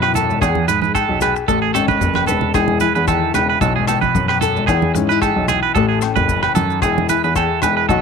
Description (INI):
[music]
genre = highlife guitar band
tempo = 112 BPM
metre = 4/4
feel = straight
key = E major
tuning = A4 = 439 Hz
[part]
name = nylon-string guitar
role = accompaniment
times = 0.0-8.0 s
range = A2 to B4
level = -21 LUFS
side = left 11 dB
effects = none
[part]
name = twangy electric guitar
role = arpeggios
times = 0.0-8.0 s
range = G#4 to B4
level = -18 LUFS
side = right 12 dB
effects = warbly pitch drift, tape echo
[part]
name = dark baby grand piano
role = bass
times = 0.0-8.0 s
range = E1 to G#2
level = -20 LUFS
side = left 1 dB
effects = none
[part]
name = damped 70s drum kit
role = drums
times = 0.0-8.0 s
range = hi-hat, kick drum, rim click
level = -25 LUFS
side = left 3 dB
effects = none
[part]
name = agogo bells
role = percussion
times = 0.0-7.8 s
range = none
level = -26 LUFS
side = left 11 dB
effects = none
[part]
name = congas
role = percussion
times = 0.1-7.8 s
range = none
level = -25 LUFS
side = right 9 dB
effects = none
[part]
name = maracas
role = percussion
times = 0.2-8.0 s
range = none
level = -32 LUFS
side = left 20 dB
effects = none
[sound]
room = light reverb, small room ambience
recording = 1960s-style stereo with parts hard left and right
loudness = -14 LUFS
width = side -6 dB against mid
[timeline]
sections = 0.0-8.0 A section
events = drum fill 2.0-2.5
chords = 0.4 E; 1.5 A; 2.5 E; 3.6 Bsus4; 4.7 E; 5.8 A; 6.8 E